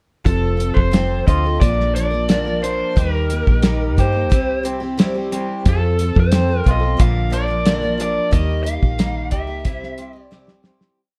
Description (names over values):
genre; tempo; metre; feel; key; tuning
folk rock and heartland rock; 90 BPM; 4/4; straight; F mixolydian; A4 = 440 Hz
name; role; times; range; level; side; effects
picked twelve-string acoustic guitar; accompaniment; 0.2-11.0 s; Bb2 to Bb4; -29 LUFS; equal; none
lead guitar through a small cranked amp; melody; 0.3-10.6 s; A4 to F5; -26 LUFS; equal; overdrive, slapback echo
electric guitar through a small old amp; riff; 0.3-11.0 s; F2 to G4; -29 LUFS; equal; spring reverb
deep dub fingered electric bass; bass; 0.3-10.8 s; F1 to G2; -22 LUFS; equal; none
cloth-damped thuddy drum kit; drums; 0.3-11.0 s; hi-hat, kick drum, snare drum; -19 LUFS; equal; none
room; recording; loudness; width
light reverb; dark, warm production; -18 LUFS; mono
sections
0.3-11.0 verse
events
fade-out 8.3-11.0; drum fill 10.3-11.0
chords
0.3 F; 1.6 Bb; 3.0 Eb; 4.3 C; 5.7 F; 7.0 Bb; 8.3 Eb; 9.7 C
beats
| 0.27 0.94 1.62 2.30 | 2.97 3.65 4.32 4.99 | 5.66 6.33 7.00 7.67 | 8.33 8.99 9.66 10.32